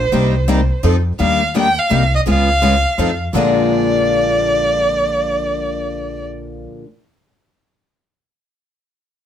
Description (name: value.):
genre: acoustic string swing (jazz manouche).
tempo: 168 BPM.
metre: 3/4.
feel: swing 63% on 8ths.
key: Bb mixolydian.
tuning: A4 = 437 Hz.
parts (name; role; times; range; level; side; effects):
warm violin; melody; 0.0-6.2 s; C5 to G5; -17 LUFS; equal; none.
upright bass; bass; 0.0-6.7 s; Bb1 to F2; -20 LUFS; equal; none.
picked steel-string acoustic guitar; accompaniment; 0.1-6.9 s; Bb2 to A4; -20 LUFS; left 5 dB; none.
picked steel-string acoustic guitar; accompaniment; 0.1-6.9 s; Bb2 to Bb4; -23 LUFS; right 5 dB; none.
room: moderate studio reverb, RT60 0.5 s.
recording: none.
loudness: -13 LUFS.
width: side -9 dB against mid.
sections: 0.0-1.2 A section; 1.2-3.3 B section; 3.3-5.5 C section.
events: none.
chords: 0.1 Cm7; 0.8 F7; 1.2 Ebmaj7; 1.9 Cm7; 2.3 Db7; 3.0 F7; 3.3 Bb7.